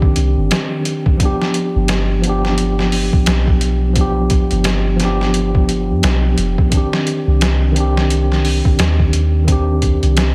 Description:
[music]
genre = trip hop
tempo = 87 BPM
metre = 4/4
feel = swing 60% on 16ths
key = C harmonic minor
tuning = A4 = 440 Hz
[part]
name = mellow tine electric piano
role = accompaniment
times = 0.0-10.3 s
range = Eb3 to G4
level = -21 LUFS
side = equal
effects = harmonic tremolo, tape echo
[part]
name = soft 808-style bass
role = bass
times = 0.0-10.3 s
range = F1 to G2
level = -18 LUFS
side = equal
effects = none
[part]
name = trip hop sampler-style drum kit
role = drums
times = 0.0-10.3 s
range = hi-hat, kick drum, snare drum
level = -20 LUFS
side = equal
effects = overdrive
[sound]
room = light reverb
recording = heavily compressed radio sound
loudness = -15 LUFS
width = mono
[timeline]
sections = 0.0-10.3 A section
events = none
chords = 0.0 Cmadd9; 1.2 G7; 6.7 Cmadd9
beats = 0.51 | 1.20 1.89 2.58 3.27 | 3.96 4.65 5.34 6.03 | 6.72 7.41 8.10 8.79 | 9.48 10.17

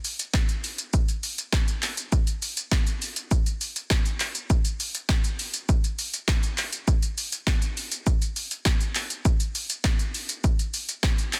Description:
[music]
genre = pop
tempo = 101 BPM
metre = 4/4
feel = straight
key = none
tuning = none
[part]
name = punchy analog drum machine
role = drums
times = 0.0-11.4 s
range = handclaps, hi-hat, kick drum, shaker, snare drum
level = -26 LUFS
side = equal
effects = none
[sound]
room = little or no reverb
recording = dense, heavily limited modern master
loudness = -26 LUFS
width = mono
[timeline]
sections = 0.0-11.4 A section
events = none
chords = none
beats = 0.34 0.94 1.53 | 2.12 2.72 3.31 3.91 | 4.50 5.09 5.69 6.28 | 6.88 7.47 8.06 8.66 | 9.25 9.85 10.44 11.04

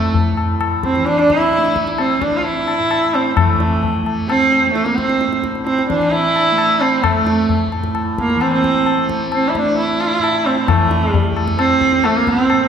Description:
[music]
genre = indian classical, Hindustani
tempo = 131 BPM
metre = 4/4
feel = straight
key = unclear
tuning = A4 = 442 Hz
[part]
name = clear sarangi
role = melody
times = 0.0-12.7 s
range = A3 to F4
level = -15 LUFS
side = right 2 dB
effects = none
[part]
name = tanpura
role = drone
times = 0.0-12.7 s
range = A2 to A3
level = -24 LUFS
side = left 1 dB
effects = none
[part]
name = tabla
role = percussion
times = 0.1-12.7 s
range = none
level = -20 LUFS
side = left 4 dB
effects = none
[sound]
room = wet concert hall reverb, RT60 2.1 s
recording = recorded in a church or concert hall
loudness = -14 LUFS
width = side -8 dB against mid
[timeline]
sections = 0.0-10.7 A section; 10.7-12.7 B section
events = none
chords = none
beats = 0.15 0.61 1.07 | 1.53 1.99 2.45 2.91 | 3.37 3.83 4.29 4.75 | 5.20 5.66 6.12 6.58 | 7.04 7.49 7.95 8.41 | 8.86 9.32 9.78 10.23 | 10.69 11.14 11.60 12.05 | 12.50

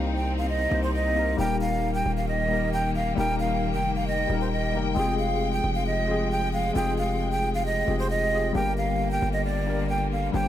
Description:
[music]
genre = hip hop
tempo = 134 BPM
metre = 4/4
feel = half-time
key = unclear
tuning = A4 = 441 Hz
[part]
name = breathy jazz flute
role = melody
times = 0.0-10.5 s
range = C5 to G5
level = -28 LUFS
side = right 2 dB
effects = ping-pong delay
[part]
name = warbly lo-fi synth keys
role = accompaniment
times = 0.0-10.5 s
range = G3 to C5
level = -29 LUFS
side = left 5 dB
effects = chorus
[part]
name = bright studio string section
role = sustained chords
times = 0.0-10.5 s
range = C3 to G5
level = -33 LUFS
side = left 2 dB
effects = none
[part]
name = distorted 808-style bass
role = bass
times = 0.0-10.5 s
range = Eb1 to C2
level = -28 LUFS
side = right 1 dB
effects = distortion
[sound]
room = light reverb, small room ambience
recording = none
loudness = -23 LUFS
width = side -12 dB against mid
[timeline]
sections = 0.0-10.5 A section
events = none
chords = 0.0 Cm7; 1.4 Eb; 5.0 Fmadd9; 8.6 Gm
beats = 0.04 0.49 0.94 | 1.39 1.83 2.28 2.73 | 3.18 3.62 4.07 4.52 | 4.97 5.42 5.86 6.31 | 6.76 7.21 7.66 8.10 | 8.55 9.00 9.45 9.89 | 10.34

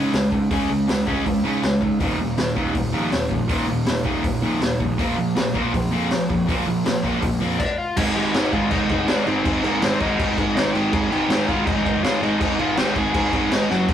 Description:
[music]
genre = punk rock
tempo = 162 BPM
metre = 4/4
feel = straight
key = unclear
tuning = A4 = 440 Hz
[part]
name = distorted electric guitar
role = riff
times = 0.0-13.9 s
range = Eb2 to Db4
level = -26 LUFS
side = left 7 dB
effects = distortion
[part]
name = sludgy distorted guitar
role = riff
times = 0.0-13.9 s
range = Eb2 to Db4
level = -22 LUFS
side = right 3 dB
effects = overdrive
[part]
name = fuzz picked electric bass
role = bass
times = 0.0-13.9 s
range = Eb1 to Ab2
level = -30 LUFS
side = equal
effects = overdrive
[part]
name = raw garage drum kit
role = drums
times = 0.1-13.9 s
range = crash cymbal, hi-hat, kick drum, snare drum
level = -24 LUFS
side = equal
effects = none
[part]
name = crunchy overdriven guitar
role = melody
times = 7.6-13.9 s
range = Bb3 to Bb5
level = -26 LUFS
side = left 3 dB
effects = none
[sound]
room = light reverb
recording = rough rehearsal-room recording, warm saturation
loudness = -18 LUFS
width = side -10 dB against mid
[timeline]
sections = 0.0-8.0 A section; 8.0-13.9 B section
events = drum fill 13.7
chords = 0.0 Db5; 2.0 Eb5; 5.0 Bb5; 8.0 Ab5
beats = 0.13 | 0.51 0.88 1.25 1.63 | 2.00 2.38 2.75 3.12 | 3.50 3.87 4.24 4.62 | 4.99 5.36 5.74 6.11 | 6.48 6.85 7.22 7.59 | 7.96 8.34 8.71 9.08 | 9.45 9.81 10.19 10.55 | 10.92 11.29 11.66 12.03 | 12.40 12.77 13.14 13.51 | 13.88

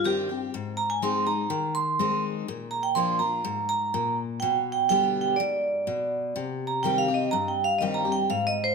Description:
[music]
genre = country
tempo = 124 BPM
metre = 4/4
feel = straight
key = C minor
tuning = A4 = 441 Hz
[part]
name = vibraphone with hard mallets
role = melody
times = 0.0-8.7 s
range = G4 to C6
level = -25 LUFS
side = right 4 dB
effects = none
[part]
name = picked steel-string acoustic guitar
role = accompaniment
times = 0.0-8.7 s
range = G2 to Ab4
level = -29 LUFS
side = left 6 dB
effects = none
[sound]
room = wet large studio reverb, RT60 1.3 s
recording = none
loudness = -24 LUFS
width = side -4 dB against mid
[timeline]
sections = 0.0-8.7 A section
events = vibraphone solo 0.0-8.7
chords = 0.0 Cm; 0.5 Ab; 2.5 Bb; 4.4 G/B; 6.4 Cm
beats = 0.05 | 0.54 1.02 1.51 1.99 | 2.48 2.96 3.45 3.93 | 4.42 4.90 5.39 5.88 | 6.36 6.84 7.33 7.82 | 8.30

